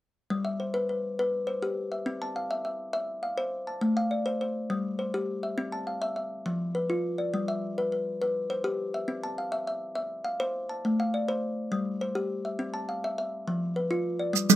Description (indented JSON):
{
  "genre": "southern african traditional, mbira-style interlocking cycle",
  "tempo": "137 BPM (dotted quarters)",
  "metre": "12/8",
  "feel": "straight",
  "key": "G mixolydian",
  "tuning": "A4 = 441 Hz",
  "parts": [
    { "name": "kalimba", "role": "arpeggios", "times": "0.3-14.6 s", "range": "F3 to A5", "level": "-28 LUFS", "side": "left 1 dB", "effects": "none" },
    { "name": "maracas", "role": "percussion", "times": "14.4-14.6 s", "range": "none", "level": "-22 LUFS", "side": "right 9 dB", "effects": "none" },
    { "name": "kalimba", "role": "arpeggios", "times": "14.5-14.6 s", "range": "G3", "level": "-15 LUFS", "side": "right 3 dB", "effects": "none" }
  ],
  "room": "little or no reverb",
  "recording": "close, detailed microphones",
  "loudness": "-28 LUFS",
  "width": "side -13 dB against mid",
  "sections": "0.3-14.3 A section",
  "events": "none",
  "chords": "0.3 G; 2.1 C; 3.8 Am; 4.7 Gsus4; 5.6 C; 6.5 Bdim/F; 7.3 G; 9.1 C; 10.8 Am; 11.7 Gsus4; 12.6 C; 13.5 Bdim/F"
}